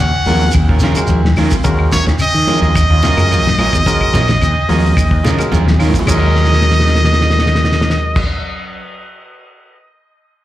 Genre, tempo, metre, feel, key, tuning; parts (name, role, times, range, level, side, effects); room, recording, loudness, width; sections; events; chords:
afrobeat; 108 BPM; 4/4; straight; Eb minor; A4 = 440 Hz
brilliant trumpet; melody; 0.0-8.2 s; Db5 to Gb5; -18 LUFS; equal; slapback echo, tape echo
semi-hollow electric guitar; arpeggios; 0.0-7.4 s; Db3 to Gb3; -22 LUFS; left 4 dB
mellow fretless electric bass; bass; 0.0-8.2 s; Bb1 to Eb3; -14 LUFS; equal
cloth-damped thuddy drum kit; drums; 0.0-9.8 s; crash cymbal, hi-hat, kick drum, ride cymbal, snare drum; -18 LUFS; equal
barky tine electric piano; accompaniment; 0.3-8.2 s; Ab3 to Bb4; -22 LUFS; left 2 dB; overdrive, slapback echo
electric guitar at the edge of break-up; stabs; 0.3-8.8 s; Gb3 to Bb4; -23 LUFS; right 7 dB; slapback echo
congas; percussion; 0.3-8.2 s; -23 LUFS; equal; slapback echo
shekere; percussion; 0.3-8.2 s; -22 LUFS; right 1 dB
claves; percussion; 0.5-8.2 s; -27 LUFS; left 6 dB
light reverb; live gig heard through the venue's PA, club reverb; -10 LUFS; side -14 dB against mid
0.0-6.1 A section; 6.1-8.3 B section
drum fill 5.5-6.1, 6.3-8.1
0.0 Ebm9; 6.1 Ebm7